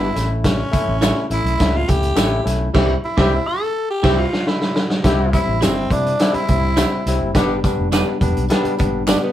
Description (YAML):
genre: uptempo 1960s-style soul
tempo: 104 BPM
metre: 4/4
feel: straight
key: C major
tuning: A4 = 440 Hz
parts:
  - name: growling tenor saxophone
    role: melody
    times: 0.0-9.3 s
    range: B3 to A4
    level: -22 LUFS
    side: equal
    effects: none
  - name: barky tine electric piano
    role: accompaniment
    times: 0.0-9.3 s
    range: G3 to E4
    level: -22 LUFS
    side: left 2 dB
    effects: overdrive
  - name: vintage muted fingered electric bass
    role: bass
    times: 0.0-9.1 s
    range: E1 to C3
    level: -22 LUFS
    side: equal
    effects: none
  - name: vintage drum kit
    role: drums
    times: 0.2-9.2 s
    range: crash cymbal, hi-hat, kick drum, snare drum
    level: -19 LUFS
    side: equal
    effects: none
  - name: tambourine and handclaps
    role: percussion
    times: 0.2-9.2 s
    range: none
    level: -32 LUFS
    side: left 1 dB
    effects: none
  - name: clean electric guitar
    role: stabs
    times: 1.0-9.2 s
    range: D4 to E5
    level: -24 LUFS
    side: right 4 dB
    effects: none
  - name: warm horn section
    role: second line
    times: 2.7-7.5 s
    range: D3 to G4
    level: -25 LUFS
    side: left 1 dB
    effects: none
room: moderate small room reverb, RT60 0.5 s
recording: band playing live in one room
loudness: -15 LUFS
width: side -12 dB against mid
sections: 0.0-5.0 A section; 5.0-9.3 B section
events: band accent 2.7-5.0; drum fill 3.9-5.0; tenor saxophone solo 5.0-9.3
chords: 0.2 A; 2.7 C; 7.4 G